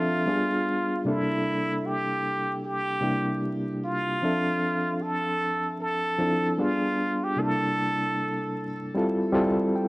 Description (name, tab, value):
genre	hip hop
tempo	76 BPM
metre	4/4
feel	swing 62% on 16ths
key	unclear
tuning	A4 = 440 Hz
part	trumpet with plunger mute	melody	0.0-9.0 s	E4 to A4	-28 LUFS	right 1 dB	none
part	bright reed electric piano	accompaniment	0.0-9.9 s	C3 to G5	-26 LUFS	equal	fast tremolo, cassette tape
room	light reverb, small room ambience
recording	vinyl crackle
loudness	-24 LUFS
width	side -22 dB against mid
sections	0.0-9.9 A section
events	reed electric piano fill 9.3-9.9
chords	0.3 G7b9; 1.1 C13; 4.2 Dm9; 6.6 G7b9; 7.4 C13; 9.0 Fmaj9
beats	0.27 | 1.06 1.85 2.64 3.43 | 4.22 5.00 5.79 6.58 | 7.37 8.16 8.95 9.74